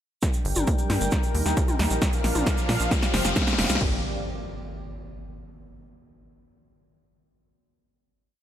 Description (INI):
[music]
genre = uplifting trance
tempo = 134 BPM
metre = 4/4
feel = straight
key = G minor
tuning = A4 = 441 Hz
[part]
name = lush unison pad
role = sustained chords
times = 0.2-4.0 s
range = D3 to G5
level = -30 LUFS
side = equal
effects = chorus, sidechain pumping
[part]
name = big-room dance drum kit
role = drums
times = 0.2-3.8 s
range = hi-hat, snare drum, toms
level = -27 LUFS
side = equal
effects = overdrive
[part]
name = punchy analog drum machine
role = drums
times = 0.2-3.9 s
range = crash cymbal, kick drum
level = -25 LUFS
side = equal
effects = none
[part]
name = egg shaker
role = percussion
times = 0.2-3.8 s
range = none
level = -35 LUFS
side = right 3 dB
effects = none
[part]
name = riser and impact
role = sound effects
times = 1.2-5.6 s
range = none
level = -34 LUFS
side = left 2 dB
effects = none
[part]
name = tight sequencer bass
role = bass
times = 0.5-4.0 s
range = F1 to Bb2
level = -27 LUFS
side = equal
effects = sidechain pumping
[sound]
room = light reverb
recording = none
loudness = -22 LUFS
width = side -11 dB against mid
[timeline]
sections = 0.2-3.8 build; 3.8-5.6 final chord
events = build-up 0.2-3.8; drum fill 0.2-3.8; riser 1.2-3.8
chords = 0.2 Gm; 1.1 Eb; 2.0 Bb; 2.9 Fsus2; 3.8 Gm